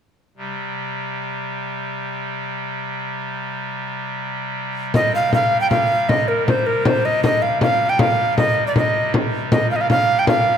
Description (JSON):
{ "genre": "medieval dance", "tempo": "157 BPM", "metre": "3/4", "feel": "straight", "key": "C minor", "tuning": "A4 = 439 Hz", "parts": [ { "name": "pipe organ, clarinet reed", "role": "drone", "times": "0.4-10.6 s", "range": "C3 to G3", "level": "-25 LUFS", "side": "equal", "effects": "none" }, { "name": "frame drum", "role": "percussion", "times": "4.9-10.5 s", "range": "none", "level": "-20 LUFS", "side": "left 1 dB", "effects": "none" }, { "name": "tenor recorder", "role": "melody", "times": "5.0-10.6 s", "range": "Bb4 to G5", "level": "-17 LUFS", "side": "right 1 dB", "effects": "none" } ], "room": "wet scoring stage reverb, RT60 1.7 s", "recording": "none", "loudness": "-17 LUFS", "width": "side -8 dB against mid", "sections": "0.4-4.9 A section; 4.9-10.6 B section", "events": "none", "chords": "none" }